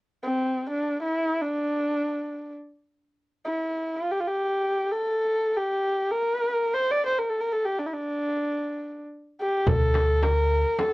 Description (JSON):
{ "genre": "Turkish makam ensemble", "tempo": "free time", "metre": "none", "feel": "none", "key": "D makam ussak", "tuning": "A4 = 440 Hz", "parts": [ { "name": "dark kamancheh", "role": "melody", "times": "0.2-10.9 s", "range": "C4 to D5", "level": "-24 LUFS", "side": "equal", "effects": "none" }, { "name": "upright bass", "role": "bass", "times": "9.7-10.6 s", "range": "D2", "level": "-23 LUFS", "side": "equal", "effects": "none" }, { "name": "darbuka", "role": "percussion", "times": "9.7-10.9 s", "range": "none", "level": "-30 LUFS", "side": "left 3 dB", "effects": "none" }, { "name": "frame drum", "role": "percussion", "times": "9.7-10.9 s", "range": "none", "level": "-28 LUFS", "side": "right 2 dB", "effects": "none" } ], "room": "light reverb", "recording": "worn, warbling old tape, cassette tape, warbly pitch drift", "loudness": "-24 LUFS", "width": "side -20 dB against mid", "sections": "0.0-9.7 A section; 9.7-10.9 B section", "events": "none", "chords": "none", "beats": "free time" }